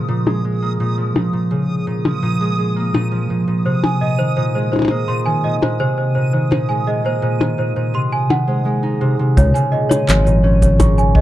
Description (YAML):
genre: folktronica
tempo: 84 BPM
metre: 4/4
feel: straight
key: Db major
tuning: A4 = 440 Hz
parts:
  - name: concert harp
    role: arpeggios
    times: 0.0-11.2 s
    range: Bb2 to Eb4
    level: -17 LUFS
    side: equal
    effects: low-pass filter
  - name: backwards swelling texture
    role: texture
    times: 0.0-8.7 s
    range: Eb6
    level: -30 LUFS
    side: right 3 dB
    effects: built-in reverb
  - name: minimal click drum kit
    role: drums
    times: 0.3-11.1 s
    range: handclaps, hi-hat, percussion blips, shaker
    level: -18 LUFS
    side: left 3 dB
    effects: low-pass filter on perc, low-pass filter on snare, low-pass filter on hats, low-pass filter on room
  - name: worn celesta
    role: second line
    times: 3.7-11.2 s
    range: C5 to Db6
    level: -20 LUFS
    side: right 1 dB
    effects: tape echo
  - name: fingered electric bass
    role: bass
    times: 9.4-11.2 s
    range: Ab1 to Db2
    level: -14 LUFS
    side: equal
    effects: tube saturation
  - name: kick drum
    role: drums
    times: 9.4-11.2 s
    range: none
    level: -14 LUFS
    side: equal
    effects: none
room: light reverb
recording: dry, close 1970s-style studio recording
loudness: -15 LUFS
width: side -14 dB against mid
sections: 0.0-9.4 A section; 9.4-11.2 B section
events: filter sweep on drum 0.0-9.4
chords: 0.0 Db6 (rootless); 3.7 Abadd9; 9.4 Db6